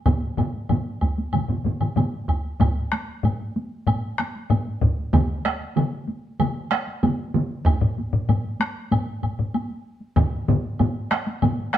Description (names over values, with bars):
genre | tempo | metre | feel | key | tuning
japanese traditional, taiko drum ensemble | 95 BPM | 4/4 | straight | none | none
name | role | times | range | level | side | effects
solo taiko drums | percussion | 0.1-11.8 s | none | -24 LUFS | left 2 dB | none
solo taiko drums | percussion | 0.1-10.3 s | none | -23 LUFS | right 1 dB | none
taiko ensemble | percussion | 0.1-11.8 s | none | -28 LUFS | equal | none
taiko ensemble | percussion | 0.1-11.8 s | none | -24 LUFS | right 2 dB | none
woodblock | percussion | 0.1-11.8 s | none | -32 LUFS | left 1 dB | none
room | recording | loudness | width
wet stone room reverb, RT60 1.0 s | band playing live in one room | -21 LUFS | side -11 dB against mid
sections
0.0-2.6 A section; 2.6-11.8 B section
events
none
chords
none